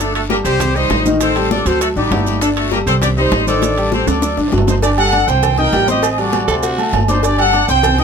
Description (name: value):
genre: latin, salsa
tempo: 199 BPM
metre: 4/4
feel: straight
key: unclear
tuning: A4 = 440 Hz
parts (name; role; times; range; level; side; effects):
- clear horn section; melody; 0.0-4.4 s; G3 to Eb5; -18 LUFS; left 1 dB; plate reverb
- warm upright piano; accompaniment; 0.0-8.0 s; C3 to Eb6; -19 LUFS; left 2 dB; none
- upright bass; bass; 0.0-8.0 s; G1 to D2; -19 LUFS; right 1 dB; none
- congas; percussion; 0.0-8.0 s; none; -26 LUFS; left 2 dB; none
- guiro; percussion; 0.0-8.0 s; none; -32 LUFS; left 6 dB; none
- maracas; percussion; 0.0-8.0 s; none; -29 LUFS; right 9 dB; none
- timbales and agogo bells; percussion; 0.0-8.0 s; none; -23 LUFS; right 12 dB; none
- bongos and cowbell; percussion; 0.3-8.0 s; none; -24 LUFS; left 6 dB; none
- clear trumpet section; melody; 4.7-8.0 s; Eb4 to G5; -16 LUFS; equal; none
- raspy soprano saxophone; second line; 6.5-7.0 s; F#4 to A4; -20 LUFS; right 4 dB; none
room: moderate studio reverb, RT60 0.5 s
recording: none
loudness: -12 LUFS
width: side -6 dB against mid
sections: 0.0-4.8 A section; 4.8-8.0 B section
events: drum fill 3.6-4.8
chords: 0.0 Gsus2; 0.6 Cm; 1.2 Am7b5; 1.8 D; 2.4 Gsus2; 3.0 Cm; 3.6 Am7b5; 4.2 D; 4.8 Gsus2; 5.4 Cm; 6.0 D7/A; 6.6 D7; 7.2 Gsus2